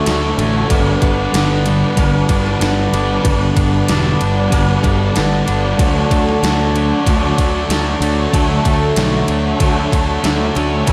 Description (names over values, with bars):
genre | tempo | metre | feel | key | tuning
rock, shoegaze and dream pop | 94 BPM | 4/4 | straight | D major | A4 = 439 Hz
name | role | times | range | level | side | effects
pedal harmonium | sustained chords | 0.0-10.9 s | F#4 to A5 | -25 LUFS | equal | none
picked twelve-string acoustic guitar | arpeggios | 0.0-10.9 s | E3 to F#4 | -28 LUFS | equal | none
thick fuzz guitar | riff | 0.0-10.9 s | G2 to D4 | -21 LUFS | equal | distortion, analog chorus
twangy electric guitar | riff | 0.0-10.9 s | G2 to D4 | -24 LUFS | equal | reverse reverb
fuzz picked electric bass | bass | 0.1-10.9 s | E1 to D2 | -21 LUFS | equal | overdrive
gated 80s digital drum machine | drums | 0.1-10.9 s | kick drum, ride cymbal, snare drum | -22 LUFS | equal | gated reverb, gated reverb snare, overdrive
room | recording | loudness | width
wet lush hall reverb, RT60 1.9 s | dreamy mix soaked in reverb | -15 LUFS | mono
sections
0.0-10.9 A section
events
none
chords
0.0 Dmaj7; 0.7 Gmaj7; 5.8 Dmaj7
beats
0.07 | 0.71 1.35 1.98 2.62 | 3.26 3.89 4.53 5.16 | 5.80 6.43 7.07 7.71 | 8.34 8.98 9.61 10.25 | 10.88